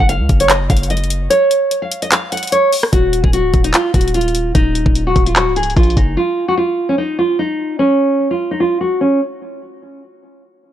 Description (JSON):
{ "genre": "hip hop, trap", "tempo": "148 BPM", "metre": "4/4", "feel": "half-time", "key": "Eb minor", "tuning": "A4 = 438 Hz", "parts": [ { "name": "nylon-string guitar", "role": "melody", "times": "0.0-9.2 s", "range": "Db4 to Gb5", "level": "-15 LUFS", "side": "right 1 dB", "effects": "low-pass filter" }, { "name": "hard-hitting 808-style bass", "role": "bass", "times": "0.0-6.2 s", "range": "Db1 to Db2", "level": "-18 LUFS", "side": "equal", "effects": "none" }, { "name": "trap drum kit", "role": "drums", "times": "0.0-6.1 s", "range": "handclaps, hi-hat, kick drum, rim click", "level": "-15 LUFS", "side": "equal", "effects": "none" } ], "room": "little or no reverb", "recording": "dry, gritty hardware recording, low-pass filter", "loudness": "-12 LUFS", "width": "side -11 dB against mid", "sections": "0.0-2.9 A section; 2.9-9.4 B section; 9.4-10.7 C section", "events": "kick muted 1.3-2.9; filter sweep 2.9-9.4", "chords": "0.0 Gb5; 2.9 Ebmadd9; 6.2 N.C.", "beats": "0.09 0.50 0.90 | 1.31 1.71 2.12 2.52 | 2.93 3.33 3.74 4.14 | 4.55 4.96 5.36 5.77 | 6.17 6.58 6.98 7.39 | 7.79 8.20 8.60 9.01" }